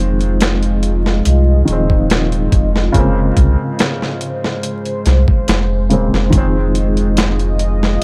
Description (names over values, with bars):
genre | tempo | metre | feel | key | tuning
trip hop | 71 BPM | 4/4 | straight | F minor | A4 = 439 Hz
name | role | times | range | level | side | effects
felt-muted upright piano | accompaniment | 0.0-8.0 s | Db3 to C4 | -22 LUFS | equal | harmonic tremolo, tape echo
deep dark ambient pad | sustained chords | 0.1-8.0 s | Ab3 to Eb5 | -23 LUFS | equal | chorus, built-in reverb
soft dub sub bass | bass | 0.0-8.0 s | Eb1 to C2 | -17 LUFS | equal | none
dusty soul sampler-style drum kit | drums | 0.2-8.0 s | hi-hat, kick drum, snare drum | -18 LUFS | equal | overdrive
room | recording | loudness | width
digital ambience | dark, warm production, vinyl crackle | -15 LUFS | mono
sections
0.0-8.0 A section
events
none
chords
0.0 Fm7; 2.9 Bbm9/F; 6.3 Fm7